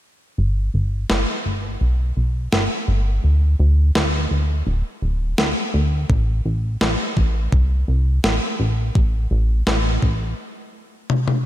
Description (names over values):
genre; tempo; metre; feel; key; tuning
synthwave; 84 BPM; 4/4; straight; unclear; A4 = 440 Hz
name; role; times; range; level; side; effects
chorused synth bass; bass; 0.4-10.3 s; D1 to D2; -18 LUFS; equal; tube saturation
clean 12-bit digital drum machine; drums; 1.1-11.4 s; snare drum, toms; -22 LUFS; equal; slapback echo
electronic kick drum; drums; 6.1-10.2 s; none; -18 LUFS; equal; none
room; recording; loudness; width
light reverb; none; -17 LUFS; side -13 dB against mid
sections
0.4-11.5 A section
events
stop 10.4-11.5; drum fill 11.1-11.5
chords
none